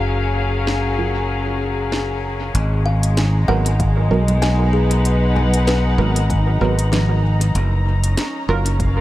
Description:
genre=ambient dub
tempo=96 BPM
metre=4/4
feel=swing 55% on 16ths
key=G# dorian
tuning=A4 = 439 Hz
part: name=muted studio string section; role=sustained chords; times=0.0-9.0 s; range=F#3 to A#5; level=-23 LUFS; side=left 2 dB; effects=none
part: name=modern bright fingered electric bass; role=bass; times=0.0-9.0 s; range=F#1 to B1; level=-17 LUFS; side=equal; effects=none
part: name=organic electronic drum kit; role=drums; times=0.7-8.9 s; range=congas, hi-hat, snare drum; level=-26 LUFS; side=equal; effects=overdrive, dub echo
part: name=filtered dub chord stab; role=stabs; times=1.0-8.7 s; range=F#3 to A#4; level=-26 LUFS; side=right 5 dB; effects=chorus, dub echo
part: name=kalimba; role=arpeggios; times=2.9-9.0 s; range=E#3 to G#5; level=-27 LUFS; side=left 2 dB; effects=tape echo
part: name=electronic kick drum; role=drums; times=3.8-8.9 s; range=none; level=-22 LUFS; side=equal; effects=overdrive
room=light reverb, digital ambience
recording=none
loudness=-16 LUFS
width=side -15 dB against mid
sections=0.0-2.5 A section; 2.5-9.0 B section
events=none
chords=0.0 F#maj7; 2.5 G#m9; 7.5 F#maj7

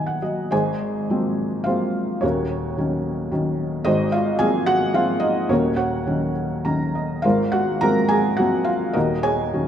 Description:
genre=classical, lyrical solo piano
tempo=95-112 BPM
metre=3/4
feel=rubato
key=unclear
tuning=A4 = 440 Hz
part: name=felt-muted upright piano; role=solo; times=0.0-9.7 s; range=Eb1 to Bb5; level=-19 LUFS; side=equal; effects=none
room=moderate scoring stage reverb, RT60 1.8 s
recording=minimal, uncompressed stereo recording, faint mains hum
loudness=-19 LUFS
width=side -9 dB against mid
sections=0.5-9.7 A section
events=felt piano fill 0.0-0.5, 6.4-7.2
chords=0.0 Ebm; 0.5 Ab13; 2.2 Ebm7; 3.9 Ab13; 5.5 Ebm7; 7.2 Ab13; 9.0 Ebm7

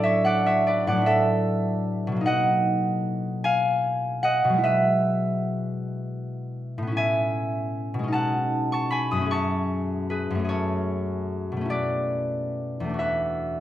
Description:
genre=classical, solo harp piece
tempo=51 BPM (dotted quarters)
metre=6/8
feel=uneven beats, rubato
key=unclear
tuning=A4 = 442 Hz
part: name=concert harp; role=solo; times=0.0-13.6 s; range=E2 to D#6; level=-22 LUFS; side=equal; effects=none
room=wet recital hall reverb, RT60 1.5 s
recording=none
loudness=-22 LUFS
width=side -12 dB against mid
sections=0.0-13.6 A section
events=none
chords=0.0 Dadd9/A; 2.3 Bmaj7; 4.6 Eadd9/B; 7.0 Amaj9; 8.1 B13; 9.3 F#madd9; 11.7 Bm11; 13.0 E9sus4

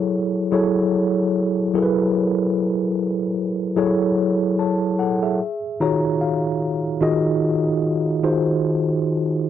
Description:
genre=R&B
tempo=74 BPM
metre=4/4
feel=swing 56% on 16ths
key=unclear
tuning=A4 = 442 Hz
part: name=mellow tine electric piano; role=solo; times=0.0-9.5 s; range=D#3 to A#5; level=-18 LUFS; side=equal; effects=slow stereo tremolo
room=light reverb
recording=dry, close 1970s-style studio recording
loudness=-18 LUFS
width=side -10 dB against mid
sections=0.0-9.5 A section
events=tine electric piano fill 5.4-7.0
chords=0.0 F#m11; 5.4 D#m11

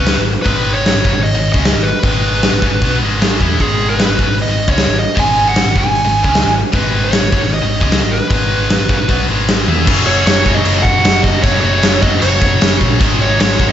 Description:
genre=hard rock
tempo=153 BPM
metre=4/4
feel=straight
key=G# minor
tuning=A4 = 440 Hz
part: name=smooth overdriven lead guitar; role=melody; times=0.0-13.7 s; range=G#4 to G#5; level=-17 LUFS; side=equal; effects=digital delay
part: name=heavy high-gain guitar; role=riff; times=0.0-13.7 s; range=F#2 to E4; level=-18 LUFS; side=left 1 dB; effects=distortion
part: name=hollow-body short-scale picked electric bass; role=bass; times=0.0-13.7 s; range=F#1 to E2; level=-18 LUFS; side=equal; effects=none
part: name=big rock drum kit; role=drums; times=0.1-13.7 s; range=crash cymbal, hi-hat, kick drum, snare drum, toms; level=-15 LUFS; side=equal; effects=none
room=moderate lush hall reverb, RT60 1.9 s, small room ambience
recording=big arena sound, nothing above 7.8 kHz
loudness=-11 LUFS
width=side -10 dB against mid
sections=0.0-9.9 A section; 9.9-13.7 B section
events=drum fill 9.7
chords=0.0 G#m; 9.9 F#5; 13.0 G#5

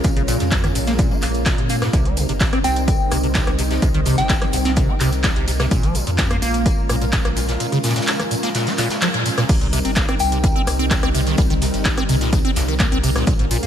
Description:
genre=acid house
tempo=127 BPM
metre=4/4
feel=straight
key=C phrygian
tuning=A4 = 440 Hz
part: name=string machine, full ensemble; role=sustained chords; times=0.0-13.7 s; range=G3 to Bb4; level=-25 LUFS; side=equal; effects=ensemble chorus, sidechain pumping
part: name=liquid acid bass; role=riff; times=0.0-13.7 s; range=C2 to C4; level=-23 LUFS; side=equal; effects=phaser, ping-pong delay
part: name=warm sub bass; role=bass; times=0.0-13.7 s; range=G1 to Bb2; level=-23 LUFS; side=equal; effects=tube saturation, sidechain pumping
part: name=electro analog drum machine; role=drums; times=0.0-13.7 s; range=crash cymbal, handclaps, hi-hat, rim click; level=-25 LUFS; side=equal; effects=none
part: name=electronic kick drum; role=drums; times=0.0-13.4 s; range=none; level=-19 LUFS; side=equal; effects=overdrive
part: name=tambourine and snare drum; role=drums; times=0.0-13.6 s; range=none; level=-32 LUFS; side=equal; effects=high-pass filter on snare, sidechain pumping on perc, high-pass filter on perc, high-pass filter on room
part: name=tambourine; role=percussion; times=0.0-13.7 s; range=none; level=-34 LUFS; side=left 2 dB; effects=none
part: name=soft synth bell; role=melody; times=2.6-4.5, 10.2-10.7 s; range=G5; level=-26 LUFS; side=left 2 dB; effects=chorus, phaser, tape echo
room=light reverb, small room reverb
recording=none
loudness=-16 LUFS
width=side -9 dB against mid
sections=0.0-9.5 A section; 9.5-13.7 B section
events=band accent 9.0; drop 9.5-13.7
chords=0.0 Bbm7; 1.9 Cm7; 5.7 Bbm7; 9.5 Cm7

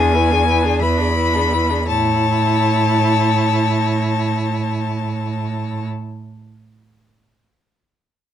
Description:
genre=quick classical-period movement for string quartet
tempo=57 BPM (dotted quarters)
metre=6/8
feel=rubato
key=A major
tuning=A4 = 439 Hz
part: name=clear violin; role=melody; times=0.0-5.9 s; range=G#5 to B5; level=-20 LUFS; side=left 8 dB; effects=none
part: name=rich violin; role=second line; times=0.0-5.8 s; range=G#4 to C#5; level=-25 LUFS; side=left 2 dB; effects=none
part: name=warm viola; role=accompaniment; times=0.0-5.8 s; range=D4 to E4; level=-23 LUFS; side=right 3 dB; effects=none
part: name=rich cello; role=bass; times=0.0-5.9 s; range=E2 to A2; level=-20 LUFS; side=right 3 dB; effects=none
room=light reverb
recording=dark, warm production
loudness=-15 LUFS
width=side -10 dB against mid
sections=0.0-1.9 A section; 1.9-6.1 B section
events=slowing down 0.0-1.9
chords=0.0 E7; 1.9 A

